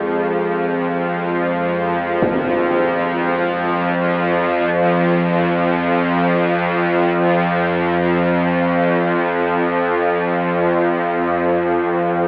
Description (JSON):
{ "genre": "dark ambient drone", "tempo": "free time", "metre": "none", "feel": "none", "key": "F minor", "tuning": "A4 = 438 Hz", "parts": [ { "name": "bowed-like drone", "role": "drone", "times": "0.0-12.3 s", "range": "F2 to F3", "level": "-18 LUFS", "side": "equal", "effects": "built-in reverb" }, { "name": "quartz singing bowl", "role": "texture", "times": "0.0-12.3 s", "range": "Ab3 to Ab4", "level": "-31 LUFS", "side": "equal", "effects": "none" }, { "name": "impact", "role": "percussion", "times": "2.2-2.4 s", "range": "none", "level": "-28 LUFS", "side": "equal", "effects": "low-pass filter on sfx" } ], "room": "wet huge ambient reverb, RT60 8.7 s", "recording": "worn, warbling old tape, cassette tape, warbly pitch drift, AM radio sound", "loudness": "-17 LUFS", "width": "mono", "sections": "0.0-12.3 A section", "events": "none", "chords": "0.0 Fm" }